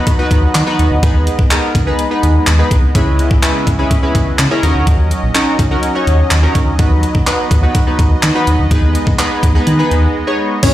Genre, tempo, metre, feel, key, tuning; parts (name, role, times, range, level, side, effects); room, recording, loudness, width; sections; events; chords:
dance-pop; 125 BPM; 4/4; straight; A4 = 437 Hz
chorused retro synth keys; accompaniment; 0.0-10.7 s; G#3 to C#5; -17 LUFS; equal; sidechain pumping
soft supersaw; sustained chords; 0.0-10.7 s; C#3 to D#5; -21 LUFS; equal; phaser, sidechain pumping
pop drum kit; drums; 0.1-10.7 s; crash cymbal, handclaps, hi-hat, kick drum; -14 LUFS; equal; overdrive
sub bass with octave; bass; 0.3-10.7 s; A#1 to D#3; -13 LUFS; equal; sidechain pumping
glassy wavetable pluck; melody; 10.6-10.7 s; C#4 to C#5; -13 LUFS; left 1 dB; chorus
tambourine; percussion; 10.6-10.7 s; -27 LUFS; left 8 dB
light reverb; played on a big sound system in a bare room, stone room reverb; -10 LUFS; side -14 dB against mid
0.0-10.6 A section
break 10.2-10.6
0.0 B; 1.0 G#m; 3.0 C#m7; 4.6 D#m7; 6.8 B; 8.7 G#m